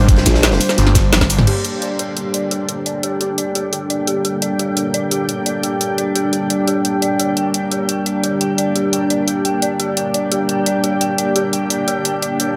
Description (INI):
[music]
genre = dark technical drum and bass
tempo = 173 BPM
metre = 4/4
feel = straight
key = G minor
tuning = A4 = 440 Hz
[part]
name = dark analog pad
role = sustained chords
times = 0.0-12.5 s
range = G3 to D5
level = -23 LUFS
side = equal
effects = chorus, sidechain pumping
[part]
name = phased detuned saw bass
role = bass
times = 0.0-1.5 s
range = G1 to Bb1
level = -18 LUFS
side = equal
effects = phaser, overdrive, sidechain pumping
[part]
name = granular cloud pad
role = texture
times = 0.0-12.6 s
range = Bb3 to G5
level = -25 LUFS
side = equal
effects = built-in reverb, sidechain pumping
[part]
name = crunchy breakbeat drum kit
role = drums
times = 0.1-1.4 s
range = hi-hat, snare drum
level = -26 LUFS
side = equal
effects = high-pass filter on hats, high-pass filter on snare, high-pass filter on room
[part]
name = drum and bass drum kit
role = drums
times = 0.1-12.5 s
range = cabasa, crash cymbal, hi-hat, ride cymbal, snare drum, toms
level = -21 LUFS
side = equal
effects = overdrive
[part]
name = electronic kick drum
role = drums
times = 0.1-1.3 s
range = none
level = -17 LUFS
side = equal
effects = overdrive
[part]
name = formant-sweep wobble bass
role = bass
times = 0.3-0.6 s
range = Bb1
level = -17 LUFS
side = equal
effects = chorus
[part]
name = dark detuned synth bell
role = arpeggios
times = 1.5-12.5 s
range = G4 to G5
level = -25 LUFS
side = equal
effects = chorus, phaser, sidechain pumping, low-pass filter, delay
[sound]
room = moderate lush hall reverb, RT60 2.3 s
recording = none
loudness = -18 LUFS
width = mono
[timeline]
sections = 0.0-1.5 A section; 1.5-12.6 B section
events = drop 0.0-1.5; drum fill 1.1-1.5; band accent 1.1; filter sweep on synth bell 1.5-12.6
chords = 0.0 Gm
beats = | 0.09 0.43 0.78 1.13 | 1.47 1.82 2.17 2.51 | 2.86 3.21 3.55 3.90 | 4.25 4.59 4.94 5.29 | 5.63 5.98 6.33 6.67 | 7.02 7.37 7.72 8.06 | 8.41 8.76 9.10 9.45 | 9.80 10.14 10.49 10.84 | 11.18 11.53 11.88 12.22